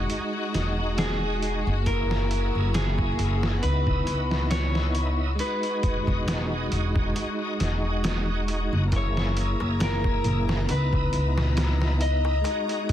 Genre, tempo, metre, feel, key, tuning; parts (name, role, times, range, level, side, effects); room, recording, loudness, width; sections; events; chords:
trip hop; 68 BPM; 4/4; swing 54% on 16ths; A4 = 441 Hz
bright tonewheel organ; accompaniment; 0.0-12.9 s; G#3 to G#4; -30 LUFS; right 1 dB; overdrive, chorus vibrato, slow rotary speaker, harmonic tremolo, tape echo
warm chamber string section; sustained chords; 0.0-12.9 s; F#4 to A#5; -38 LUFS; left 5 dB
upright bass; bass; 0.0-12.4 s; E1 to C#2; -25 LUFS; equal
trip hop sampler-style drum kit; drums; 0.1-12.9 s; hi-hat, kick drum, snare drum; -28 LUFS; equal; small room reverb
electric guitar at the edge of break-up; melody; 1.0-12.9 s; G#4 to D#5; -31 LUFS; left 2 dB; tape echo
darbuka; percussion; 8.9-12.8 s; -35 LUFS; left 1 dB
small room ambience; dense, heavily limited modern master, vinyl crackle; -23 LUFS; side -11 dB against mid
0.0-12.9 A section
0.0 Emaj9; 1.9 F#9; 3.6 C#m9; 5.4 Emaj9; 8.9 F#9; 10.7 C#m9